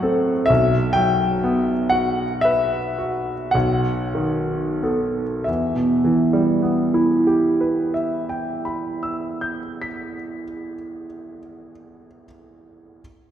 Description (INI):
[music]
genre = classical, romantic nocturne for solo piano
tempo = 28-43 BPM (dotted quarters)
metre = 9/8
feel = rubato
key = E minor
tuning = A4 = 440 Hz
[part]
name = clear concert grand piano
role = solo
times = 0.0-13.0 s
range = B1 to B6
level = -19 LUFS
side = equal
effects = none
[sound]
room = wet concert hall reverb, RT60 2.2 s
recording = recorded in a church or concert hall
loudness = -18 LUFS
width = side -10 dB against mid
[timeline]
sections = 0.0-5.5 A section; 5.5-10.8 B section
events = slowing down 0.0-5.5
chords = 0.5 Bsus4; 3.5 B7; 5.5 Em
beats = | 0.49 1.92 3.54 | 5.47 7.24 8.99